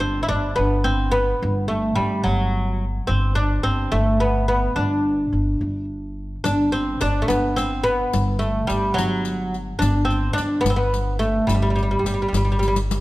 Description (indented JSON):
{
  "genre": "Persian modal ensemble",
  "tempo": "72 BPM (dotted quarters)",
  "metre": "6/8",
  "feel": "straight",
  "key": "G dastgah mahur",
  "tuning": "A4 = 441 Hz",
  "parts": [
    { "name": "oud", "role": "melody", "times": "0.0-12.8 s", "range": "F#3 to E4", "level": "-21 LUFS", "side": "equal", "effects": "none" },
    { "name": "upright bass", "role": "bass", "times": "0.0-13.0 s", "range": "G1", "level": "-23 LUFS", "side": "equal", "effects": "none" },
    { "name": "riq", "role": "percussion", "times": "6.5-13.0 s", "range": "none", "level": "-31 LUFS", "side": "left 4 dB", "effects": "none" }
  ],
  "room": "light reverb",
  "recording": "dark, warm production",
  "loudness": "-19 LUFS",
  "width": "side -18 dB against mid",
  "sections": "0.0-13.0 A section",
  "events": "drum fill 12.6-13.0",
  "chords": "none",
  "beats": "0.58 | 1.42 2.25 | 3.09 3.93 | 4.77 5.61 | 6.45 7.29 | 8.13 8.97 | 9.81 10.65 | 11.49 12.33"
}